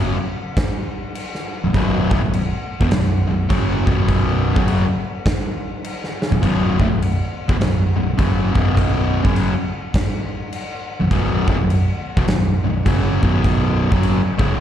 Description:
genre	stoner and doom metal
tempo	102 BPM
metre	4/4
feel	swing 63% on 8ths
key	unclear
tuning	A4 = 441 Hz
part	fuzz guitar	riff	0.0-14.6 s	B1 to F#3	-19 LUFS	equal	distortion, slapback echo
part	fingered electric bass	bass	0.0-14.6 s	B0 to F#1	-21 LUFS	equal	overdrive
part	big rock drum kit	drums	0.6-14.5 s	crash cymbal, kick drum, snare drum	-20 LUFS	equal	none
room	light reverb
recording	live gig heard through the venue's PA, recital hall reverb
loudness	-16 LUFS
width	side -10 dB against mid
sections	0.0-14.6 A section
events	drum fill 6.1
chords	0.0 B5

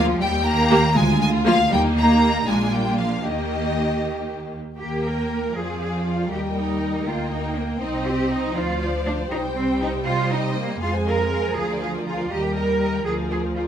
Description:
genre	quick classical-period movement for string orchestra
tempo	80 BPM (dotted quarters)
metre	6/8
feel	straight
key	Eb major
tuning	A4 = 440 Hz
part	warm symphonic violin section	melody	0.0-13.7 s	D5 to C6	-27 LUFS	left 1 dB	none
part	rich symphonic violin section	second line	0.0-13.7 s	Eb4 to Ab5	-29 LUFS	left 2 dB	none
part	rich symphonic viola section	accompaniment	0.0-13.7 s	F3 to G4	-25 LUFS	equal	none
part	rich symphonic cello section	bass	0.0-13.6 s	Eb3 to Bb4	-25 LUFS	right 2 dB	none
part	warm symphonic double bass section	bass	0.0-13.7 s	Bb1 to C3	-26 LUFS	right 2 dB	none
room	light reverb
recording	close, detailed microphones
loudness	-19 LUFS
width	side -9 dB against mid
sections	0.0-4.8 A section; 4.8-13.7 A section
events	none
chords	0.2 Eb; 1.0 Bb7/D; 1.7 Eb; 2.5 Bb; 3.2 Eb; 5.6 Fm6; 6.3 Eb; 7.8 Cm; 8.6 Dm7; 9.3 Cm7; 10.8 Fm; 11.6 Bb7/D; 12.3 Eb; 13.1 Bb7/D

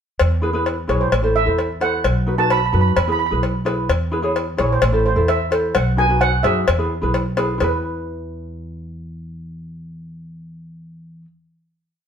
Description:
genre	calypso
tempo	129 BPM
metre	4/4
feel	straight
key	E major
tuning	A4 = 439 Hz
part	upright bass	bass	0.2-11.2 s	A1 to F#2	-22 LUFS	equal	none
part	cowbell	percussion	0.2-7.8 s	none	-22 LUFS	left 5 dB	none
part	ukulele	accompaniment	0.4-11.3 s	D#4 to C#5	-23 LUFS	equal	none
part	steel pan	melody	0.9-11.2 s	B4 to B5	-21 LUFS	right 4 dB	none
room	moderate studio reverb, RT60 0.9 s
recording	band playing live in one room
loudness	-16 LUFS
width	side -8 dB against mid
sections	0.2-7.6 verse; 7.6-11.3 final chord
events	none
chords	0.2 E; 1.1 Am; 2.0 B; 3.0 E; 4.8 Am; 5.7 B; 6.7 E

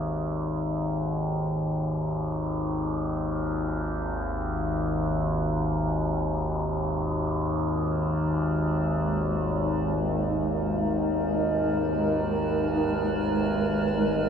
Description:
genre	dark ambient drone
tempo	free time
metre	none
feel	none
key	G# minor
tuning	A4 = 440 Hz
part	overtone-sweeping drone	drone	0.0-14.3 s	G#1 to D#2	-26 LUFS	equal	chorus, built-in reverb
part	granular cloud pad	sustained chords	8.6-14.3 s	G#3 to B4	-28 LUFS	right 2 dB	built-in reverb, shimmer reverb
part	metallic inharmonic drone	texture	7.8-14.3 s	D#4	-34 LUFS	equal	chorus, built-in reverb, phaser, shimmer reverb
room	wet huge ambient reverb, RT60 7.8 s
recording	none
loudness	-25 LUFS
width	side -7 dB against mid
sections	0.0-14.3 A section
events	none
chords	0.0 G#madd9

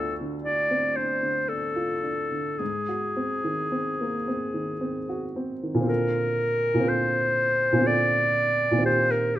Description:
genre	classical, impressionist duo for clarinet and grand piano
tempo	52-61 BPM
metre	3/4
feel	rubato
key	Bb major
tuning	A4 = 441 Hz
part	clear clarinet	melody	0.0-9.4 s	G4 to D5	-24 LUFS	equal	none
part	warm grand piano	accompaniment	0.0-9.4 s	D2 to A4	-27 LUFS	right 1 dB	none
room	moderate stone room reverb, RT60 1.2 s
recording	none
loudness	-23 LUFS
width	side -13 dB against mid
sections	0.0-5.9 A section; 5.9-9.4 B section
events	none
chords	0.0 Dm7; 2.6 Ab9; 5.9 Bbmaj9; 8.9 F7sus2/Bb

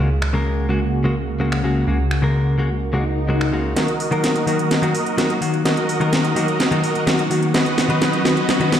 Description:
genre	EDM, festival progressive house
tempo	127 BPM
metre	4/4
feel	straight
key	Eb minor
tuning	A4 = 440 Hz
part	direct-recorded clean electric guitar	accompaniment	0.0-8.7 s	Db3 to B4	-22 LUFS	left 2 dB	tape echo
part	lush unison pad	sustained chords	0.0-8.8 s	Db3 to Gb4	-24 LUFS	equal	chorus, phaser
part	fat analog bass	bass	0.0-3.7 s	Db2	-22 LUFS	right 1 dB	none
part	house drum kit	drums	0.2-8.8 s	finger snaps, hi-hat, snare drum	-22 LUFS	equal	none
part	swell and riser	sound effects	3.0-8.8 s	none	-29 LUFS	left 2 dB	none
part	dense compressed supersaw	riff	3.8-8.8 s	Gb4 to Eb5	-22 LUFS	right 2 dB	low-pass filter, tape echo
room	moderate recital hall reverb, RT60 1.4 s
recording	played on a big sound system in a bare room, stone room reverb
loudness	-16 LUFS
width	side -9 dB against mid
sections	0.0-3.8 A section; 3.8-8.8 B section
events	swell 3.0-3.8; build-up 3.8-8.8; drum fill 3.8-8.8; filter sweep on supersaw synth 3.8-8.8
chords	0.0 Gbadd9/Db; 3.8 Ebm; 7.5 B/D#

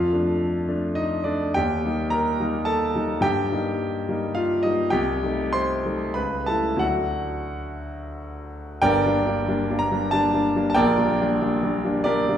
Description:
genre	classical, romantic character piece for solo piano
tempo	83-110 BPM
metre	3/4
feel	rubato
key	G minor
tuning	A4 = 440 Hz
part	clear concert grand piano	solo	0.0-12.4 s	G1 to C6	-21 LUFS	equal	none
room	wet recital hall reverb, RT60 1.7 s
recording	heard from further back in the room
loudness	-21 LUFS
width	side -9 dB against mid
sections	0.0-8.8 A section; 8.8-12.4 B section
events	none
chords	0.0 Dm/F; 1.6 Eb; 3.2 Eb/G; 4.9 Am7b5/C; 6.2 A7/C#; 6.8 D; 8.8 Gm; 10.8 Gm/Bb

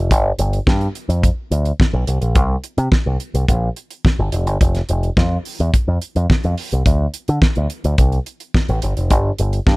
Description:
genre	disco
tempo	107 BPM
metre	4/4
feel	straight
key	unclear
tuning	A4 = 440 Hz
part	picked electric bass with an envelope filter	bass	0.0-9.8 s	F1 to D3	-17 LUFS	equal	none
part	damped 70s drum kit	drums	0.1-9.8 s	hi-hat, kick drum, snare drum	-16 LUFS	equal	none
room	little or no reverb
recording	none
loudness	-15 LUFS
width	side -25 dB against mid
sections	0.0-9.8 A section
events	none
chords	none

